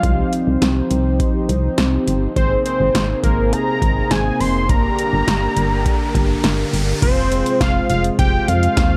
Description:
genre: synth-pop.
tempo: 103 BPM.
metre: 4/4.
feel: straight.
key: unclear.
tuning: A4 = 440 Hz.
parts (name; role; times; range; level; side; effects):
fat analog lead; melody; 0.0-9.0 s; Bb4 to C6; -23 LUFS; equal; analog delay.
mellow synth brass; accompaniment; 0.0-9.0 s; Bb3 to C5; -26 LUFS; equal; chorus.
chorused pulse-width pad; sustained chords; 0.0-9.0 s; C3 to Ab4; -27 LUFS; equal; none.
solid FM bass; bass; 0.0-9.0 s; F1 to F2; -22 LUFS; equal; none.
electro analog drum machine; drums; 0.0-8.9 s; crash cymbal, hi-hat, kick drum, snare drum; -22 LUFS; equal; overdrive.
riser; sound effects; 4.1-7.0 s; none; -35 LUFS; equal; none.
room: light reverb, digital ambience.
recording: dark, warm production.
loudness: -17 LUFS.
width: mono.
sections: 0.0-7.0 A section; 7.0-9.0 B section.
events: riser 4.1-7.0.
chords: 0.0 Cm; 2.4 Abadd9; 4.7 Gm; 7.0 Fm.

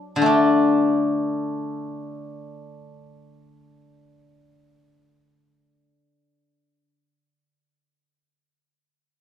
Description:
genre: chinese traditional, Chinese solo plucked strings.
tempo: free time.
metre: none.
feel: none.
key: D gong mode.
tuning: A4 = 439 Hz.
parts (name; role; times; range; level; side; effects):
steel-string zither; solo; 0.0-6.8 s; D3 to D4; -19 LUFS; left 2 dB; none.
room: wet recital hall reverb, RT60 1.5 s.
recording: none.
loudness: -18 LUFS.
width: side -10 dB against mid.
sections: 0.3-6.4 A section.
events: none.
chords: none.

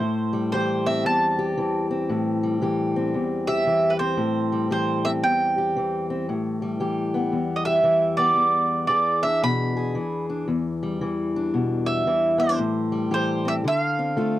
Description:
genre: acoustic country blues, solo or duo.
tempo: 114 BPM.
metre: 4/4.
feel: swing 64% on 8ths.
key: A minor.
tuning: A4 = 440 Hz.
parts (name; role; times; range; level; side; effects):
mandolin; melody; 0.0-14.4 s; B4 to B5; -22 LUFS; right 2 dB; none.
fingerpicked steel-string acoustic guitar; accompaniment; 0.0-14.4 s; E2 to G#4; -24 LUFS; left 2 dB; none.
room: light reverb.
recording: dry, close 1970s-style studio recording.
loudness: -21 LUFS.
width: side -14 dB against mid.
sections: 0.0-14.4 A section.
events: none.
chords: 0.0 Am9; 8.4 E7#9; 12.6 Am7; 13.6 Dm7.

